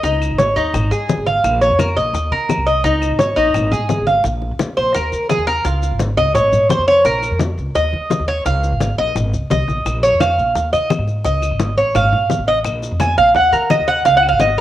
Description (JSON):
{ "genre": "latin, Cuban son and guajira", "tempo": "171 BPM", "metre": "4/4", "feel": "straight", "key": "Bb minor", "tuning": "A4 = 440 Hz", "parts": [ { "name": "Cuban tres", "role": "arpeggios", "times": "0.0-14.6 s", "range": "Eb4 to Ab5", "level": "-15 LUFS", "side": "right 1 dB", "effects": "cassette tape" }, { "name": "upright bass", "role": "bass", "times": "0.0-14.6 s", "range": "Ab1 to Eb3", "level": "-21 LUFS", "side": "equal", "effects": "none" }, { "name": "bongos", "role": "percussion", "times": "0.0-14.6 s", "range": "none", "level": "-23 LUFS", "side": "left 6 dB", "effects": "none" }, { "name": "congas", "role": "percussion", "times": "0.0-14.6 s", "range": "none", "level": "-24 LUFS", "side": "left 2 dB", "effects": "none" }, { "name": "maracas", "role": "percussion", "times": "0.0-14.6 s", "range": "none", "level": "-37 LUFS", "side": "left 6 dB", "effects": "none" }, { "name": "claves", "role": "percussion", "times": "0.2-3.7, 9.9-14.4 s", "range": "none", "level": "-32 LUFS", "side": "left 4 dB", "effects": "none" } ], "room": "moderate spring reverb, RT60 1.4 s, studio reverb", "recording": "home recording on cassette", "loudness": "-14 LUFS", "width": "side -13 dB against mid", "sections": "0.0-4.2 A section; 4.2-14.6 B section", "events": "Cuban tres solo 4.2-14.6", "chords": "0.0 Dbsus2; 0.7 Ab5; 1.4 Bbm; 2.1 Eb5; 2.8 Dbsus2; 3.5 Ab5; 4.2 Bb5; 4.9 Eb5; 5.7 Db; 6.4 Abadd11; 7.1 Bbm; 7.8 Dbsus2/Eb; 8.5 Db; 9.2 Absus2; 9.9 Bb5; 10.6 Ebsus4; 11.3 Dbsus2; 12.0 F7#9/G#; 12.7 Bb5; 13.4 Ebm; 14.1 Db5" }